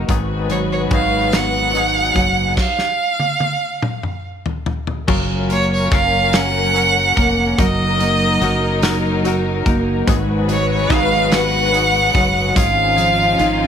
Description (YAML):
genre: six-eight pop ballad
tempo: 48 BPM (dotted quarters)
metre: 6/8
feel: straight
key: F# major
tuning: A4 = 440 Hz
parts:
  - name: nylon-string guitar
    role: accompaniment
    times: 0.0-13.7 s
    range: G#2 to F#4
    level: -21 LUFS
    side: right 1 dB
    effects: double-tracked left and right
  - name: warm studio string section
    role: sustained chords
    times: 0.0-13.7 s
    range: F#3 to B4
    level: -23 LUFS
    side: left 2 dB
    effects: none
  - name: direct-recorded clean electric guitar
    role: arpeggios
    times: 0.0-13.7 s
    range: G#2 to A#4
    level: -27 LUFS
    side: left 11 dB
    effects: tremolo
  - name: mellow fretless electric bass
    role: bass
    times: 0.0-13.7 s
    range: E#1 to G#1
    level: -22 LUFS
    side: equal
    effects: none
  - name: loose indie drum kit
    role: drums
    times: 0.1-13.6 s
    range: crash cymbal, hi-hat, kick drum, snare drum, toms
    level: -20 LUFS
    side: equal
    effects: none
  - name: clear violin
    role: melody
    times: 0.5-13.7 s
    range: C#5 to F#5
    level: -17 LUFS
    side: right 2 dB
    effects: slapback echo
room: small room ambience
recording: none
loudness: -14 LUFS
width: side -8 dB against mid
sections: 0.0-5.1 A section; 5.1-13.7 A section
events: drum fill 2.6-5.1; stop 2.6-5.1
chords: 0.1 G#m7; 2.6 N.C.; 5.1 F#maj7; 7.6 D#m/F#; 10.1 G#m7; 12.6 C#add9/G#